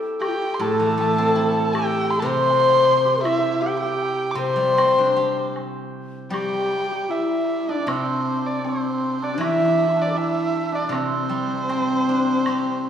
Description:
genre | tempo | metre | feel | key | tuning
chinese traditional, Chinese chamber ensemble | 78 BPM | 2/4 | rubato | C gong mode | A4 = 440 Hz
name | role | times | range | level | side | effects
hammered dulcimer | second line | 0.0-12.9 s | C4 to C5 | -28 LUFS | right 2 dB | none
dark erhu | melody | 0.2-12.9 s | C5 to D6 | -24 LUFS | right 3 dB | none
low xiao | second line | 0.2-12.9 s | C4 to C6 | -22 LUFS | left 3 dB | none
woodblock | percussion | 0.2-12.6 s | none | -36 LUFS | left 1 dB | none
steel-string zither | accompaniment | 0.6-12.9 s | A2 to G4 | -27 LUFS | equal | none
room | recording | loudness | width
wet recital hall reverb, RT60 1.8 s | heard from further back in the room | -19 LUFS | side -9 dB against mid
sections
0.0-6.3 A section; 6.3-12.9 B section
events
none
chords
none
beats
| 0.21 0.98 | 1.74 2.49 | 3.24 4.00 | 4.76 5.54 | 6.33 7.10 | 7.88 8.65 | 9.41 10.16 | 10.92 11.68 | 12.46

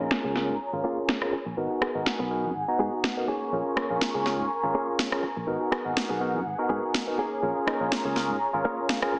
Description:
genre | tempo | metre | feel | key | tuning
filtered disco house | 123 BPM | 4/4 | swing 55% on 16ths | unclear | A4 = 440 Hz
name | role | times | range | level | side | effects
barky tine electric piano | accompaniment | 0.0-9.1 s | B3 to A#5 | -29 LUFS | equal | phaser, low-pass filter
muted studio violin section | sustained chords | 0.0-9.2 s | G#4 to C#6 | -32 LUFS | equal | low-pass filter
direct-recorded clean electric guitar | riff | 0.0-9.2 s | A#3 to G#5 | -31 LUFS | equal | warbly pitch drift, low-pass filter
fingered electric bass | bass | 0.0-9.2 s | G#1 to G#2 | -35 LUFS | equal | low-pass filter
electronic snare drum and rim click | drums | 0.1-9.1 s | none | -29 LUFS | equal | low-pass filter on snare, low-pass filter on hats, low-pass filter on perc, low-pass filter on room
room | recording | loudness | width
moderate digital room reverb, RT60 1.2 s, digital ambience | heavily compressed radio sound, multiband compression, small speaker sound | -25 LUFS | side -29 dB against mid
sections
0.0-9.2 A section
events
filter sweep 0.0-9.2; clean electric guitar fill 8.4-9.2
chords
0.0 A#m7; 1.6 G#m7; 3.3 A#m7; 5.5 G#m7; 7.2 A#m7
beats
0.11 0.60 1.09 | 1.57 2.06 2.55 3.04 | 3.52 4.01 4.50 4.99 | 5.48 5.96 6.45 6.94 | 7.43 7.92 8.40 8.89

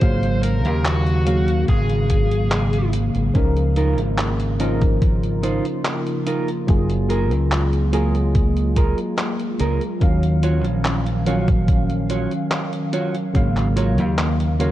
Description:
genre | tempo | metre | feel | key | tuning
vaporwave | 72 BPM | 4/4 | straight | Gb major | A4 = 440 Hz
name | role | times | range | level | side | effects
nasal lead guitar with a parked wah | melody | 0.0-2.9 s | Gb4 to C5 | -26 LUFS | left 1 dB | overdrive, tape echo
tine electric piano | accompaniment | 0.0-14.7 s | Db3 to F5 | -23 LUFS | equal | overdrive, analog chorus, tape echo
warbly tape-like pad | sustained chords | 0.0-14.7 s | Db3 to F5 | -28 LUFS | left 1 dB | chorus, built-in reverb
modern bright fingered electric bass | bass | 0.0-14.7 s | Gb1 to Eb2 | -20 LUFS | equal | tube saturation
detuned 8-bit digital drum machine | drums | 0.0-14.7 s | handclaps, hi-hat | -28 LUFS | equal | none
electronic kick drum | drums | 0.0-13.5 s | none | -18 LUFS | equal | none
mellow electric guitar | riff | 3.8-14.7 s | Eb4 to Db5 | -28 LUFS | right 4 dB | wide subtle chorus, tape echo
room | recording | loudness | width
light reverb | dark, warm production, cassette tape | -17 LUFS | side -14 dB against mid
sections
0.0-14.7 A section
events
none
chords
0.0 Ab13sus4; 3.4 Db69; 6.7 Gbmaj9; 10.0 Ebm9; 13.4 Ab13sus4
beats
| 0.02 0.85 1.69 2.52 | 3.35 4.18 5.02 5.85 | 6.68 7.52 8.35 9.19 | 10.02 10.85 11.69 12.52 | 13.35 14.19

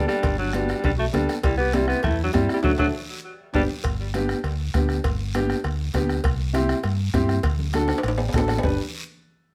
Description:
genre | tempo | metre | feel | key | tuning
latin, cumbia | 200 BPM | 4/4 | straight | G major | A4 = 440 Hz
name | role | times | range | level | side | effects
clear alto saxophone | melody | 0.0-3.6 s | F#3 to B3 | -28 LUFS | equal | plate reverb, tape echo
breathy clarinet | second line | 0.0-3.6 s | D4 to G4 | -33 LUFS | equal | none
dark upright piano | accompaniment | 0.0-8.8 s | A3 to B4 | -28 LUFS | equal | none
fingered electric bass | bass | 0.0-8.8 s | G1 to G2 | -28 LUFS | equal | none
bombo | percussion | 0.1-8.7 s | none | -30 LUFS | equal | none
guiro | percussion | 0.1-8.7 s | none | -42 LUFS | equal | none
congas | percussion | 0.2-8.7 s | none | -36 LUFS | equal | none
cowbell and timbales | percussion | 0.2-8.7 s | none | -34 LUFS | equal | none
room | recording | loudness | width
moderate studio reverb, RT60 0.7 s | none | -23 LUFS | mono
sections
0.0-3.8 A section; 3.8-8.6 B section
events
band accent 2.6-3.8; drum fill 2.9-3.8, 7.9-8.6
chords
0.0 G; 1.4 C; 2.6 D; 3.2 G; 6.2 C; 7.4 D; 8.6 G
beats
| 0.24 0.54 0.84 1.14 | 1.44 1.75 2.04 2.35 | 2.65 2.95 3.25 3.55 | 3.85 4.15 4.45 4.75 | 5.04 5.34 5.64 5.94 | 6.24 6.54 6.84 7.14 | 7.44 7.74 8.04 8.34 | 8.64

